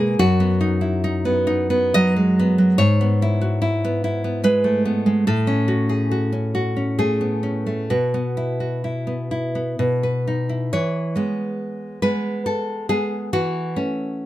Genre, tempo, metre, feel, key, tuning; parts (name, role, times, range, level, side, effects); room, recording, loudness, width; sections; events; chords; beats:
romantic piece for solo classical guitar; 63-73 BPM; 3/4; rubato; E major; A4 = 440 Hz
nylon-string guitar; solo; 0.0-14.3 s; F#2 to D#5; -18 LUFS; equal
light reverb; close, detailed microphones; -18 LUFS; side -14 dB against mid
0.0-10.7 A section; 10.7-14.3 B section
0.2 B/F#; 2.8 E/G#; 5.3 F#m/A; 7.9 Bsus4; 9.8 B; 10.7 E; 13.3 F#m7/E
| 0.18 1.02 1.94 | 2.79 3.62 4.44 | 5.26 6.10 6.99 | 7.92 8.85 9.79 | 10.72 11.60 12.46 | 13.33 14.20